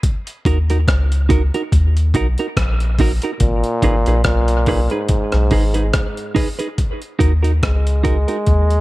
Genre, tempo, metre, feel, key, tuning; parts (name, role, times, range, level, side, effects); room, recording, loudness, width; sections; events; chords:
dub reggae; 71 BPM; 4/4; swing 56% on 16ths; Eb minor; A4 = 439 Hz
breakbeat sampler-style drum kit; drums; 0.0-8.8 s; hi-hat, kick drum, rim click; -19 LUFS; equal
clean electric guitar; accompaniment; 0.5-8.4 s; Eb4 to Cb5; -22 LUFS; right 4 dB; high-pass filter, dub echo
soft dub sub bass; bass; 0.5-8.8 s; Ab1 to Eb2; -16 LUFS; equal
bright trombone; melody; 3.4-8.8 s; Ab2 to Ab3; -21 LUFS; equal; dub echo
digital ambience; -14 LUFS; side -18 dB against mid
0.0-6.8 A section; 6.8-8.8 B section
break 0.0-3.4
0.0 Ebm; 3.4 Abm; 6.8 Ebm